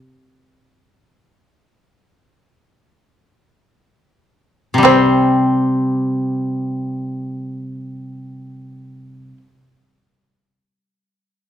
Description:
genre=japanese traditional, Japanese chamber music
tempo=free time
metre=none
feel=none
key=unclear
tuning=A4 = 440 Hz
part: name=koto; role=accompaniment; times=4.7-9.4 s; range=C3 to C4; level=-16 LUFS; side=left 1 dB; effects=none
part: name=shamisen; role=melody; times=4.8-9.4 s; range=C4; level=-18 LUFS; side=right 7 dB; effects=none
room=wet recital hall reverb, RT60 1.5 s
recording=dark, warm production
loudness=-14 LUFS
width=side -10 dB against mid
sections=0.0-4.8 A section; 4.8-11.5 B section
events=slowing down 0.0-4.8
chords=none

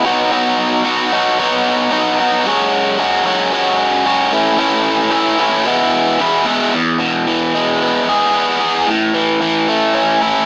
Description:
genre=rock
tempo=112 BPM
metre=4/4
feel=straight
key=E major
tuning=A4 = 438 Hz
part: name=biting overdriven guitar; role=solo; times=0.0-10.5 s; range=E2 to G#4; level=-15 LUFS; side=equal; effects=none
room=moderate studio ambience, RT60 0.5 s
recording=small speaker sound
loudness=-15 LUFS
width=mono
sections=0.0-6.8 A section; 6.8-10.5 B section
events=none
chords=0.1 B; 2.5 F#sus2; 4.3 A; 5.7 E; 8.9 A

